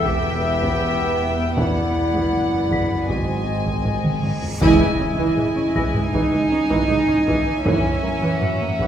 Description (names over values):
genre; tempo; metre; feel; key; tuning
cinematic, suspense film score; 79 BPM; 4/4; straight; C# dorian from 4.6 s; A4 = 440 Hz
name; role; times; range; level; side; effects
warm clarinet; second line; 0.0-3.8 s; E4 to G4; -25 LUFS; left 1 dB; none
dark symphonic viola section; accompaniment; 0.0-8.9 s; E3 to C#4; -25 LUFS; right 1 dB; none
rich symphonic double bass section; bass; 0.0-8.9 s; E1 to F#2; -27 LUFS; right 2 dB; none
warm symphonic cello section; bass; 0.0-8.9 s; E2 to E4; -23 LUFS; right 2 dB; none
warm studio violin section; melody; 0.1-8.9 s; F#5 to G#5; -28 LUFS; left 3 dB; none
warm symphonic violin section; second line; 0.1-8.9 s; D5 to E5; -28 LUFS; left 2 dB; none
taiko ensemble; drums; 0.1-8.9 s; none; -26 LUFS; equal; none
reverse cymbal and impact; sound effects; 4.3-7.7 s; none; -29 LUFS; equal; none
small celesta; texture; 2.7-8.9 s; B5 to B6; -33 LUFS; left 3 dB; none
room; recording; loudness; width
wet recital hall reverb, RT60 1.6 s; recorded in a church or concert hall; -17 LUFS; side -9 dB against mid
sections
0.0-4.6 A section; 4.6-8.9 B section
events
drum fill 3.9-4.6; reverse cymbal 4.3-4.6; band accent 4.6-5.4; impact 4.6-7.7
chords
0.0 Em; 1.6 Bm/E; 3.1 G#7; 4.6 C#madd9; 7.7 F#7